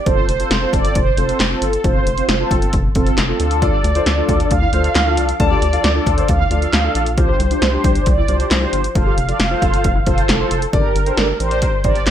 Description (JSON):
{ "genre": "synth-pop", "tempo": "135 BPM", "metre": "4/4", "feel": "straight", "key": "F major", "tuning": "A4 = 440 Hz", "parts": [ { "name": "mellow synth brass", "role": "melody", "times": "0.0-12.1 s", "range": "A4 to F5", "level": "-21 LUFS", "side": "right 3 dB", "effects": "chorus, ping-pong delay" }, { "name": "mellow synth brass", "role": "accompaniment", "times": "0.1-12.1 s", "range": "C4 to D5", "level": "-22 LUFS", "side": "left 1 dB", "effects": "chorus" }, { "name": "rubbery square bass", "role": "bass", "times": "0.1-12.1 s", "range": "F1 to D2", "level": "-20 LUFS", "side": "equal", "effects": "none" }, { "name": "punchy analog drum machine", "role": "drums", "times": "0.1-12.1 s", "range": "handclaps, hi-hat, kick drum, snare drum", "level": "-18 LUFS", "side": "equal", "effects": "gated reverb" }, { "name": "warm grand piano", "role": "second line", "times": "3.6-6.7, 10.7-12.1 s", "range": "C5 to A5", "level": "-26 LUFS", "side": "left 5 dB", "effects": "wide subtle chorus, ping-pong delay" }, { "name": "warbly dusty pluck", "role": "arpeggios", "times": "3.6-10.7 s", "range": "E4 to G4", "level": "-29 LUFS", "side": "left 3 dB", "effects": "chorus, ping-pong delay" } ], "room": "light reverb", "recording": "bright 1980s-style digital production", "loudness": "-14 LUFS", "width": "side -10 dB against mid", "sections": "0.0-10.7 A section; 10.7-12.1 B section", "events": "none", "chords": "0.1 F; 3.4 Dm; 7.2 Csus2; 9.0 F; 10.7 Gm" }